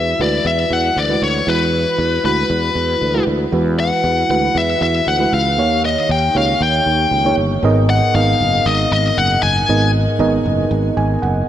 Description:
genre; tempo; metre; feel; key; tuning
1980s-style pop; 117 BPM; 4/4; straight; G# dorian from 7.6 s; A4 = 442 Hz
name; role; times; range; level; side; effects
smooth overdriven lead guitar; melody; 0.0-9.9 s; B4 to G#5; -17 LUFS; left 3 dB; shimmer reverb
mellow FM electric piano; accompaniment; 0.0-11.5 s; G#2 to G#5; -18 LUFS; right 2 dB; chorus, shimmer reverb
sustaining fretless electric bass; bass; 0.0-11.4 s; F#1 to E2; -20 LUFS; right 1 dB; none
room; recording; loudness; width
moderate lush hall reverb, RT60 2.4 s; none; -14 LUFS; side -11 dB against mid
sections
0.0-7.6 A section; 7.6-11.5 B section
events
FM electric piano fill 10.7-11.5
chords
0.0 Eadd9; 5.6 D#7; 7.6 G#madd9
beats
0.45 0.97 | 1.48 1.99 2.50 3.02 | 3.53 4.04 4.56 5.07 | 5.58 6.09 6.61 7.12 | 7.63 8.15 8.66 9.17 | 9.69 10.20 10.71 11.22

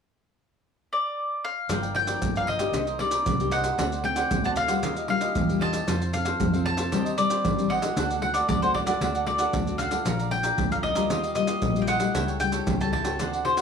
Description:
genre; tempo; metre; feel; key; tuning
samba and choro; 115 BPM; 4/4; straight; G minor; A4 = 441 Hz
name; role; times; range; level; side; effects
mandolin; melody; 0.9-13.6 s; C5 to A5; -27 LUFS; left 1 dB; none
cavaquinho; accompaniment; 1.7-13.6 s; D4 to Bb5; -32 LUFS; right 5 dB; none
nylon-string guitar; accompaniment; 1.7-13.6 s; G2 to A4; -30 LUFS; left 7 dB; none
vintage muted fingered electric bass; bass; 1.7-13.6 s; G1 to F2; -31 LUFS; equal; none
maracas, surdo and pandeiro; percussion; 1.7-13.6 s; none; -29 LUFS; right 1 dB; none
room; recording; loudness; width
moderate studio reverb, RT60 0.9 s; none; -23 LUFS; side -6 dB against mid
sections
0.0-1.7 A section; 1.7-13.6 B section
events
none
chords
0.0 N.C.; 1.7 Gm7; 2.7 Cm7; 3.8 D7; 4.8 Ebadd9; 5.9 F; 6.9 Cmadd9/Eb; 8.0 D; 10.1 Bbmaj7; 11.1 Ebadd9; 12.1 A7/C#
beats
0.13 0.65 1.17 | 1.70 2.22 2.74 3.26 | 3.79 4.31 4.83 5.35 | 5.88 6.40 6.92 7.44 | 7.97 8.49 9.01 9.54 | 10.06 10.58 11.10 11.63 | 12.15 12.67 13.19

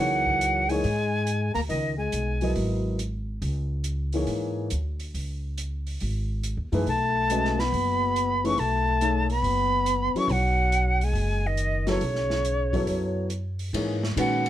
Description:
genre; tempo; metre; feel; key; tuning
modal jazz; 140 BPM; 4/4; swing 67% on 8ths; C# minor; A4 = 443 Hz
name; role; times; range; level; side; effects
jazz flute; melody; 0.0-2.5, 6.9-14.5 s; C#5 to C#6; -26 LUFS; right 2 dB; none
breathy trombone; second line; 0.0-2.5, 6.9-13.3 s; C#3 to C#4; -30 LUFS; left 5 dB; none
dark concert grand piano; accompaniment; 0.0-14.4 s; D#3 to E5; -28 LUFS; left 1 dB; none
upright bass; bass; 0.0-14.5 s; F#1 to A#2; -28 LUFS; equal; none
open jazz drum kit; drums; 0.3-14.5 s; hi-hat, kick drum, ride cymbal, snare drum; -37 LUFS; right 1 dB; none
room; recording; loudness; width
light reverb; close, detailed microphones; -23 LUFS; side -12 dB against mid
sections
0.0-13.7 A section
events
none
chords
0.0 C#13sus4; 6.9 B9sus4; 13.7 C#13sus4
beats
0.41 0.84 1.27 | 1.70 2.13 2.56 2.99 | 3.42 3.85 4.28 4.71 | 5.14 5.57 6.00 6.43 | 6.86 7.28 7.71 8.14 | 8.57 9.00 9.43 9.86 | 10.29 10.72 11.15 11.58 | 12.01 12.44 12.88 13.31 | 13.74 14.17

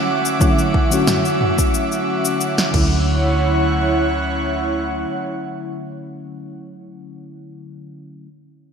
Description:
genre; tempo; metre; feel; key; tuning
sunset chillout; 90 BPM; 4/4; straight; D major; A4 = 440 Hz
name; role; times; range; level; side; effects
mellow FM electric piano; accompaniment; 0.0-8.3 s; D3 to F#4; -24 LUFS; left 2 dB; chorus, auto-pan, low-pass filter, ping-pong delay
airy breathy pad; sustained chords; 0.0-6.5 s; C#4 to D6; -21 LUFS; right 1 dB; chorus
deep house drum kit; drums; 0.3-2.9 s; cabasa, crash cymbal, snare drum, toms; -22 LUFS; equal; overdrive
electronic kick drum; drums; 0.4-2.9 s; none; -18 LUFS; right 1 dB; overdrive
hollow-body short-scale fingered electric bass; bass; 2.7-5.0 s; D2; -20 LUFS; right 1 dB; none
room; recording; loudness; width
wet lush hall reverb, RT60 1.9 s; bright 1980s-style digital production; -16 LUFS; side -6 dB against mid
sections
0.0-3.1 A section; 3.1-5.7 B section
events
none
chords
0.0 Dmaj9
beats
| 0.41 1.07 1.74 2.41 | 3.07 3.74 4.41 5.07

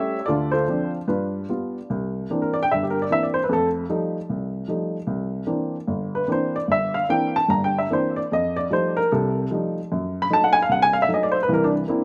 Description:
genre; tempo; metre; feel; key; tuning
solo jazz; 150 BPM; 4/4; swing 64% on 8ths, rubato; C mixolydian; A4 = 440 Hz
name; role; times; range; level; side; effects
dark baby grand piano; solo; 0.0-12.0 s; G1 to B5; -23 LUFS; equal; slapback echo
room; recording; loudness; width
little or no reverb; recorded outdoors, with no room sound; -23 LUFS; mono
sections
0.0-1.9 A section; 1.9-12.0 B section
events
grand piano solo 1.9-12.0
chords
0.3 Dm7; 1.1 G7; 1.9 C9; 3.5 F9; 5.1 C9; 8.3 F9; 9.9 F#dim7; 11.5 C9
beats
| 0.28 0.68 1.08 1.50 | 1.91 2.31 2.71 3.11 | 3.51 3.90 4.30 4.70 | 5.09 5.49 5.89 6.29 | 6.69 7.09 7.50 7.90 | 8.31 8.71 9.11 9.51 | 9.91 10.30 10.70 11.10 | 11.49 11.89

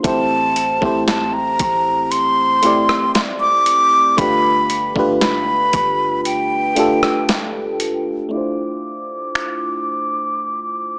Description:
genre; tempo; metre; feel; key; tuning
contemporary R&B; 58 BPM; 4/4; straight; D minor; A4 = 440 Hz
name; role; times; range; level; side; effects
breathy mellow silver concert flute; melody; 0.0-11.0 s; G5 to D6; -20 LUFS; equal; low-pass filter
FM electric piano; accompaniment; 0.0-11.0 s; A3 to D5; -23 LUFS; equal; chorus, low-pass filter
soft 808-style bass; bass; 0.0-8.3 s; G1 to A1; -39 LUFS; equal; none
dusty soul sampler-style drum kit; drums; 0.0-9.6 s; finger snaps, hi-hat, kick drum, rim click, snare drum; -24 LUFS; equal; none
room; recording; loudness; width
light reverb; small speaker sound; -17 LUFS; mono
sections
0.0-8.3 A section; 8.3-11.0 B section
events
none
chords
0.0 Am7; 4.2 G7; 8.3 Dm9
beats
| 0.04 1.08 2.11 3.15 | 4.18 5.21 6.25 7.28 | 8.32 9.35 10.39

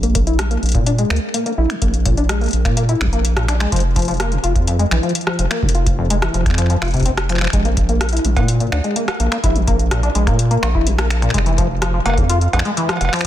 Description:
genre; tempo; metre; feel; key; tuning
IDM; 126 BPM; 4/4; straight; unclear; A4 = 439 Hz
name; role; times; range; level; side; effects
deep acid bass; arpeggios; 0.0-13.3 s; F2 to F4; -20 LUFS; left 2 dB; lush chorus, tape echo
round analog bass; bass; 0.0-13.1 s; F1 to Bb2; -18 LUFS; equal; none
booming analog drum machine; drums; 0.0-13.3 s; cowbell, finger snaps, hi-hat, rim click; -23 LUFS; equal; soft clipping on snare, ping-pong delay
electronic kick drum; drums; 0.2-12.3 s; none; -20 LUFS; equal; none
room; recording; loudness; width
light reverb, digital ambience; dense, heavily limited modern master; -14 LUFS; side -12 dB against mid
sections
0.0-13.3 A section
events
none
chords
none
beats
0.39 0.86 1.34 | 1.82 2.29 2.77 3.25 | 3.72 4.20 4.67 5.15 | 5.63 6.10 6.58 7.06 | 7.53 8.01 8.48 8.96 | 9.44 9.91 10.39 10.87 | 11.34 11.82 12.29 12.77 | 13.25

